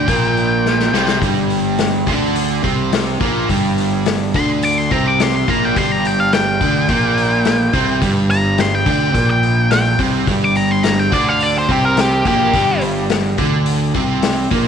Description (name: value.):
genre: blues rock power trio and southern rock.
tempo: 106 BPM.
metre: 4/4.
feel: straight.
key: G minor.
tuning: A4 = 440 Hz.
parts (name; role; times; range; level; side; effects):
octave-fuzz lead guitar; melody; 0.0-12.8 s; G4 to D6; -18 LUFS; left 1 dB; distortion, tape echo.
overdriven semi-hollow guitar; riff; 0.0-14.7 s; G2 to D4; -17 LUFS; right 1 dB; none.
fuzz fingered electric bass; bass; 0.0-14.7 s; G1 to D2; -22 LUFS; right 1 dB; overdrive.
vintage drum kit; drums; 0.1-14.6 s; hi-hat, kick drum, snare drum; -21 LUFS; left 4 dB; none.
room: moderate spring reverb, RT60 2.1 s.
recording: 1960s-style stereo.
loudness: -13 LUFS.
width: side -7 dB against mid.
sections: 0.0-14.7 A section.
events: drum fill 0.6-1.2.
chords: 0.0 Gm.